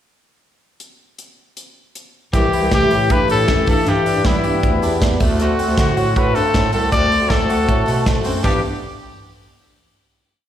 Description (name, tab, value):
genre	jangly indie pop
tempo	157 BPM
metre	4/4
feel	straight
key	G major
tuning	A4 = 441 Hz
part	modern studio drum kit	drums	0.8-8.5 s	crash cymbal, hi-hat, kick drum, snare drum	-20 LUFS	right 1 dB	none
part	clear trumpet	melody	2.3-8.6 s	E4 to D5	-19 LUFS	left 2 dB	plate reverb, slapback echo
part	picked twelve-string acoustic guitar	accompaniment	2.3-8.6 s	C3 to B4	-26 LUFS	right 6 dB	plate reverb, slapback echo
part	direct-recorded clean electric guitar	arpeggios	2.3-8.6 s	E3 to G4	-22 LUFS	left 2 dB	lush chorus, plate reverb, slapback echo
part	mellow bass clarinet	bass	2.3-8.6 s	C2 to G3	-21 LUFS	right 1 dB	none
room	moderate club reverb, RT60 0.6 s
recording	live gig heard through the venue's PA, recital hall reverb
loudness	-14 LUFS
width	side -10 dB against mid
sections	0.8-2.3 pickup bar; 2.3-8.4 pre-chorus; 8.4-10.0 final chord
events	none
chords	0.8 N.C.; 2.3 C6; 3.7 G6; 5.2 D7; 8.4 G6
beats	| 0.80 1.18 1.57 1.95 | 2.33 2.72 3.10 3.49 | 3.87 4.25 4.64 5.02 | 5.40 5.78 6.16 6.54 | 6.92 7.30 7.68 8.06 | 8.44